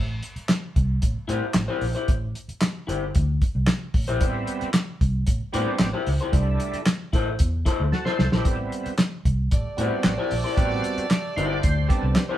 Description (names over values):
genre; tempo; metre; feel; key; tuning
funk; 113 BPM; 4/4; straight; A dorian; A4 = 439 Hz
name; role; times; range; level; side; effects
vintage muted fingered electric bass; bass; 0.0-12.1 s; G1 to A2; -26 LUFS; equal; none
cloth-damped thuddy drum kit; drums; 0.2-12.3 s; handclaps, hi-hat, kick drum, snare drum; -23 LUFS; equal; none
electric guitar through a small old amp; accompaniment; 1.3-12.4 s; E4 to C5; -28 LUFS; left 5 dB; none
overdriven tonewheel organ; stabs; 4.2-12.4 s; G3 to D5; -29 LUFS; right 3 dB; chorus vibrato, slow rotary speaker
clear horn section; second line; 9.5-12.4 s; A3 to D5; -30 LUFS; right 3 dB; none
room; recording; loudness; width
moderate studio reverb, RT60 0.7 s; band playing live in one room; -21 LUFS; side -12 dB against mid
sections
0.0-12.4 A section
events
break 0.0-4.2; drum fill 7.9-8.5; tonewheel organ fill 11.1-12.4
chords
0.0 Am7; 6.3 C6; 8.5 Am7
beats
0.49 1.02 1.56 | 2.09 2.62 3.15 3.68 | 4.21 4.74 5.27 5.80 | 6.33 6.86 7.39 7.92 | 8.45 8.98 9.51 10.04 | 10.57 11.10 11.63 12.16